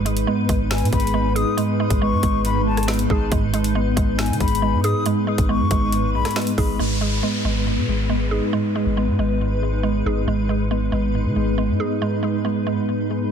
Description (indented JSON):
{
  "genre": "hip hop, drill",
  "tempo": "138 BPM",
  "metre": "4/4",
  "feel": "half-time",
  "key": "G# minor",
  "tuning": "A4 = 440 Hz",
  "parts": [
    { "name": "soft electric-piano-like synth keys", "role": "accompaniment", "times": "0.0-13.3 s", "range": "G#2 to D#4", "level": "-24 LUFS", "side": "left 2 dB", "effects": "chorus, phaser, low-pass filter" },
    { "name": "granular cloud pad", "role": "sustained chords", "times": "0.0-13.3 s", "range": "G#3 to B4", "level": "-28 LUFS", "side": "equal", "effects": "built-in reverb" },
    { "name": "mallet-like synth pluck", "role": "arpeggios", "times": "0.0-13.3 s", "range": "G#3 to G#4", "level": "-25 LUFS", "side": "right 6 dB", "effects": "chorus, low-pass filter, ping-pong delay" },
    { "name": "long sustained 808-style bass", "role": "bass", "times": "0.0-11.8 s", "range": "G#1 to D#3", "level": "-24 LUFS", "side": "equal", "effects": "none" },
    { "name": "drill drum kit", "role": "drums", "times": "0.1-6.7 s", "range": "finger snaps, hi-hat, kick drum, rim click, snare drum", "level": "-23 LUFS", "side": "equal", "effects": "none" },
    { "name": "silver concert flute", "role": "second line", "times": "0.7-6.4 s", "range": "G#5 to D#6", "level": "-27 LUFS", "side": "left 7 dB", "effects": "ping-pong delay" },
    { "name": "downlifter", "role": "sound effects", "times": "6.8-10.3 s", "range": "none", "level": "-30 LUFS", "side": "equal", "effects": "none" }
  ],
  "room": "little or no reverb",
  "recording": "dense, heavily limited modern master",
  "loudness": "-18 LUFS",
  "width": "side -7 dB against mid",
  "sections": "0.0-6.8 A section; 6.8-13.3 B section",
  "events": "none",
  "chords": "0.0 G#m"
}